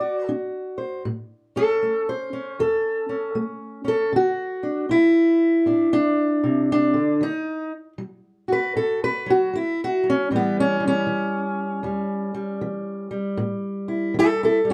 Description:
acoustic country blues, solo or duo; 78 BPM; 4/4; swing 64% on 8ths; A mixolydian; A4 = 445 Hz
fingerpicked steel-string acoustic guitar; solo; 0.0-14.7 s; E2 to D5; -22 LUFS; equal
wet studio reverb, RT60 0.5 s; dark, warm production; -23 LUFS; mono
0.0-14.7 A section
steel-string acoustic guitar solo 0.0-14.7
0.0 D7; 1.1 A; 4.1 D7; 7.2 D#dim; 10.3 A7
0.28 | 1.05 1.82 2.59 3.36 | 4.13 4.90 5.67 6.44 | 7.21 7.99 8.76 9.53 | 10.30 11.07 11.84 12.62 | 13.39 14.16

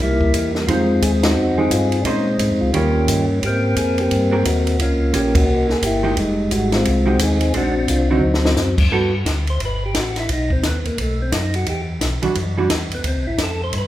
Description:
soul jazz organ trio; 175 BPM; 4/4; swing 62% on 8ths; G major from 8.9 s; A4 = 441 Hz
percussive tonewheel organ; melody; 0.0-13.9 s; Gb3 to C5; -19 LUFS; left 1 dB; slow rotary speaker
mellow tonewheel organ; bass; 0.0-13.9 s; F1 to Bb2; -21 LUFS; equal; slow rotary speaker
compact cocktail drum kit; drums; 0.2-13.8 s; crash cymbal, hi-hat, kick drum, ride cymbal, snare drum; -23 LUFS; equal
vintage hollow-body jazz guitar; accompaniment; 0.7-9.1, 12.2-12.7 s; D3 to C5; -23 LUFS; right 3 dB
moderate recital hall reverb, RT60 1.4 s; recorded in a church or concert hall; -16 LUFS; side -14 dB against mid
0.0-8.9 A section; 8.9-13.9 B section
band accent 1.2, 5.3; drum fill 8.2-8.6; tonewheel organ solo 8.9-13.9
0.0 C7; 0.7 Fm9; 2.0 Bbm9; 2.7 Eb9; 3.4 Abmaj9; 4.8 Bbm6; 5.5 C7b13; 6.2 Fm9; 7.5 Bb9; 8.2 D7b9; 8.9 Gmaj9; 10.3 B; 11.7 Em9; 13.0 Dm7
0.33 | 0.68 1.02 1.36 1.71 | 2.05 2.39 2.73 3.08 | 3.42 3.76 4.11 4.45 | 4.79 5.13 5.48 5.82 | 6.16 6.51 6.85 7.19 | 7.54 7.88 8.22 8.57 | 8.91 9.26 9.60 9.95 | 10.29 10.63 10.98 11.32 | 11.67 12.01 12.36 12.70 | 13.04 13.39 13.73

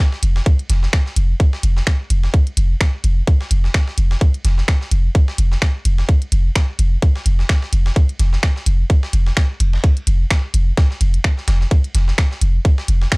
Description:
minimal techno; 128 BPM; 4/4; swing 56% on 16ths; A4 = 440 Hz
breakbeat sampler-style drum kit; drums; 0.1-13.2 s; ride cymbal, snare drum; -31 LUFS; equal; high-pass filter on cymbals, high-pass filter on snare, high-pass filter on room
punchy sub bass; bass; 0.2-13.1 s; F1; -15 LUFS; equal; tube saturation, sidechain pumping
minimal click drum kit; drums; 0.2-13.2 s; finger snaps, hi-hat; -21 LUFS; equal
electronic kick drum; drums; 0.5-13.2 s; -14 LUFS; equal
little or no reverb; dry, gritty hardware recording; -14 LUFS; side -31 dB against mid
0.0-13.2 A section
| 0.46 0.93 1.40 1.87 | 2.34 2.81 3.27 3.74 | 4.21 4.68 5.15 5.62 | 6.09 6.55 7.02 7.49 | 7.96 8.43 8.90 9.37 | 9.84 10.30 10.77 11.24 | 11.71 12.18 12.65 13.12

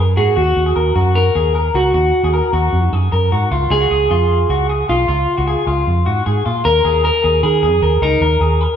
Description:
jangly indie pop; 153 BPM; 4/4; straight; A4 = 440 Hz
electric guitar through a small old amp; arpeggios; 0.0-8.8 s; D#4 to A#4; -19 LUFS; left 3 dB; spring reverb
vintage muted fingered electric bass; bass; 0.0-8.7 s; B1 to D#3; -17 LUFS; right 1 dB
electric guitar through a small old amp; melody; 0.2-8.8 s; E#4 to A#4; -16 LUFS; right 1 dB
wet large studio reverb, RT60 1.0 s; band playing live in one room; -13 LUFS; side -8 dB against mid
0.0-6.7 A section; 6.7-8.8 B section
0.4 D#m; 3.5 C#; 6.7 D#5
| 0.37 0.77 1.16 1.55 | 1.95 2.34 2.73 3.12 | 3.52 3.91 4.30 4.69 | 5.08 5.48 5.87 6.26 | 6.65 7.04 7.43 7.83 | 8.22 8.61

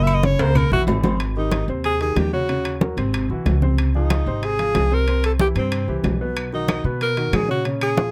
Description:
Afro-Cuban jazz; 186 BPM; 4/4; straight; Ab major; A4 = 440 Hz
breathy alto saxophone; melody; 0.0-8.1 s; C4 to Fb5; -25 LUFS; equal
warm grand piano; accompaniment; 0.0-8.1 s; Bb2 to C6; -28 LUFS; equal
upright bass; bass; 0.0-8.1 s; F#1 to B2; -24 LUFS; equal
agogo bells and timbales; percussion; 0.1-8.1 s; -30 LUFS; equal
claves; percussion; 0.1-0.7, 6.4-8.0 s; -37 LUFS; equal
congas; percussion; 0.1-8.1 s; -26 LUFS; equal
little or no reverb; -20 LUFS; mono
0.0-1.2 A section; 1.2-8.1 B section
alto saxophone solo 0.0-1.2; drum fill 0.4-1.2
0.0 Gb9; 1.2 Abmaj7; 2.5 Ebm7; 3.1 Ab7alt; 3.8 Dbmaj9; 5.1 C; 6.4 Bmaj7
0.23 0.55 0.88 | 1.20 1.52 1.84 2.17 | 2.49 2.81 3.13 3.46 | 3.78 4.10 4.43 4.75 | 5.07 5.40 5.72 6.04 | 6.36 6.69 7.01 7.33 | 7.66 7.98

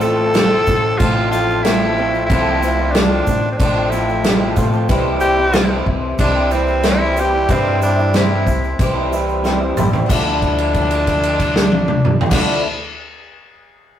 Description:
folk rock and heartland rock; 92 BPM; 4/4; straight; D minor; A4 = 440 Hz
raspy tenor saxophone; melody; 0.0-12.6 s; C4 to A4; -19 LUFS; equal; tape echo
picked twelve-string acoustic guitar; accompaniment; 0.0-12.7 s; A2 to C5; -24 LUFS; left 2 dB
pedal harmonium; sustained chords; 0.0-12.6 s; D4 to C6; -31 LUFS; equal
electric guitar through a small old amp; riff; 0.0-12.6 s; A2 to F4; -22 LUFS; equal
upright bass; bass; 0.0-12.6 s; A1 to A2; -22 LUFS; equal
tube shaker; percussion; 0.0-10.4 s; -40 LUFS; right 5 dB
natural country drum kit; drums; 0.3-12.5 s; crash cymbal, kick drum, snare drum, toms; -18 LUFS; equal
moderate stone room reverb, RT60 1.1 s; rough rehearsal-room recording, warm saturation; -13 LUFS; side -10 dB against mid
0.0-10.1 A section; 10.1-12.7 B section
drum fill 9.4-10.1; held note 10.1-12.3
0.0 F/A; 4.9 C; 10.1 Dmadd9
0.35 1.00 1.65 | 2.30 2.95 3.60 4.25 | 4.90 5.55 6.20 6.85 | 7.50 8.15 8.80 9.45 | 10.10 10.75 11.40 12.05

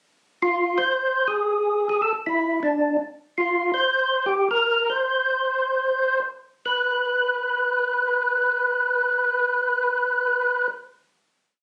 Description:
jazz; 137-162 BPM; 4/4; swing 66% on 8ths; A4 = 440 Hz
percussive tonewheel organ; solo; 0.4-10.7 s; D4 to C5; -22 LUFS; equal; slow rotary speaker, overdrive, chorus vibrato
wet studio reverb, RT60 0.6 s; recorded on a phone in the room, studio ambience; -23 LUFS; mono
0.0-0.5 pickup bar; 0.5-6.7 A section; 6.7-10.1 final note
slowing down 3.5-6.7
0.14 | 0.51 0.88 1.25 1.63 | 2.00 2.37 2.74 3.12 | 3.49 3.86 4.24 4.62 | 5.01 5.41 5.81 6.23 | 6.66 7.10 7.53 7.97 | 8.40 8.84 9.27 9.71

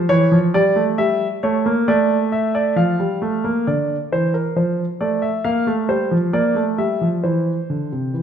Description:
classical, baroque-style two-part invention for grand piano; 67 BPM; 4/4; straight; D minor; A4 = 440 Hz
warm concert grand piano; solo; 0.0-8.2 s; C3 to F5; -16 LUFS; right 1 dB
moderate recital hall reverb, RT60 1.7 s; minimal, uncompressed stereo recording; -16 LUFS; side -8 dB against mid
0.0-3.7 A section; 3.7-8.2 B section
0.1 A7/E; 1.9 Dm/A; 3.7 Dm; 5.5 Bb; 7.2 C
| 0.10 0.98 1.88 2.77 | 3.67 4.57 5.45 6.34 | 7.24 8.14

